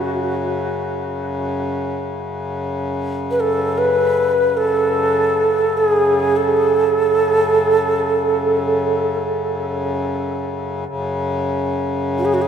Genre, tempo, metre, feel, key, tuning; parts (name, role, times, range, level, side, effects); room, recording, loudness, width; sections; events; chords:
world meditative, free-time meditation music; free time; F# minor; A4 = 438 Hz
mellow Native American-style cedar flute; melody; 0.0-12.5 s; F#4 to B4; -17 LUFS; right 1 dB; dub echo
hand-pumped harmonium; drone; 0.0-12.5 s; F#2 to C#3; -22 LUFS; left 1 dB
wet plate reverb, RT60 2.4 s; echo-heavy mix; -16 LUFS; side -8 dB against mid
0.0-12.5 A section